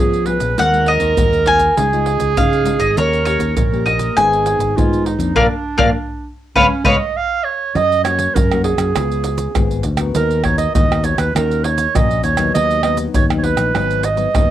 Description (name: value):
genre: samba and choro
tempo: 100 BPM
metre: 4/4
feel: straight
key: F# major from 7.8 s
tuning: A4 = 440 Hz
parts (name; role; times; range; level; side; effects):
- bowl-back mandolin; melody; 0.0-7.0 s; Bb4 to Ab5; -16 LUFS; left 1 dB; cassette tape
- clear clarinet; second line; 0.0-14.5 s; Db4 to F5; -18 LUFS; right 5 dB; cassette tape
- nylon-string guitar; accompaniment; 0.0-14.5 s; Ab2 to A#4; -24 LUFS; left 8 dB; cassette tape
- fingered electric bass; bass; 0.0-14.5 s; Ab1 to F3; -20 LUFS; left 1 dB; none
- maracas, pandeiro, surdo and tamborim; percussion; 0.1-14.5 s; none; -20 LUFS; right 1 dB; none
room: moderate small room reverb, RT60 0.6 s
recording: home recording on cassette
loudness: -13 LUFS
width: side -12 dB against mid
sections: 0.0-7.8 A section; 7.8-14.5 B section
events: band accent 5.4-7.8; drum fill 7.0-7.8; clarinet solo 7.8-14.5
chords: 0.0 Db7/F; 0.6 Ab7/Eb; 1.8 Dbadd9; 3.0 Eb7; 4.2 Abm; 5.4 Bb; 6.6 Db7; 7.8 F#; 9.0 C#7; 10.2 Bmaj7/D#; 11.3 D#m7; 12.5 B/D#; 13.7 G#m7